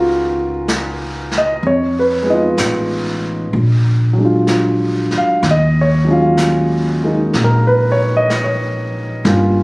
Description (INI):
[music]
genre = jazz ballad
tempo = 63 BPM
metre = 4/4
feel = swing 68% on 8ths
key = Eb minor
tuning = A4 = 440 Hz
[part]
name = dark grand piano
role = accompaniment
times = 0.0-9.6 s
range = Gb3 to F5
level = -15 LUFS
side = equal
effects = none
[part]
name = upright bass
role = bass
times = 0.0-9.6 s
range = G1 to F2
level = -17 LUFS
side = equal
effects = none
[part]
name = vintage brush drum kit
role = drums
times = 0.7-9.6 s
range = brushed snare drum, hi-hat, snare drum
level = -24 LUFS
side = equal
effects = none
[sound]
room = light reverb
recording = recorded on a phone in the room, studio reverb, compression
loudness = -13 LUFS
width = side -27 dB against mid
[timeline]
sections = 0.0-9.6 A section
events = none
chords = 0.0 Gb69; 1.6 Fm7b5; 3.5 Bb7b13; 5.4 Ebm11